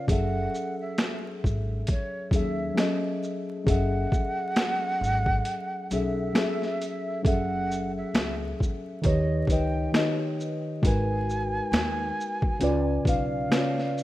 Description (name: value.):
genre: lo-fi hip hop.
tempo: 67 BPM.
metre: 4/4.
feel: swing 58% on 16ths.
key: F# dorian.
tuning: A4 = 440 Hz.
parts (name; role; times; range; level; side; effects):
breathy mellow silver concert flute; melody; 0.0-14.0 s; C#5 to G#5; -32 LUFS; right 2 dB; low-pass filter, tape echo.
muted felt-like synth keys; accompaniment; 0.0-14.0 s; C#3 to E#5; -28 LUFS; left 1 dB; chorus, low-pass filter.
upright bass; bass; 0.1-13.4 s; F#1 to D#2; -30 LUFS; equal; none.
boom bap sampler-style drum kit; drums; 0.1-14.0 s; finger snaps, hi-hat, kick drum, shaker, snare drum; -26 LUFS; equal; overdrive.
room: light reverb, digital ambience.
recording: rough home demo mix, vinyl crackle.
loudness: -24 LUFS.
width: side -15 dB against mid.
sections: 0.0-7.2 A section; 7.2-14.0 B section.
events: break 5.5-7.2.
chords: 0.1 F#m9; 9.0 D#7b13; 10.8 G#m9; 12.6 C#7b9.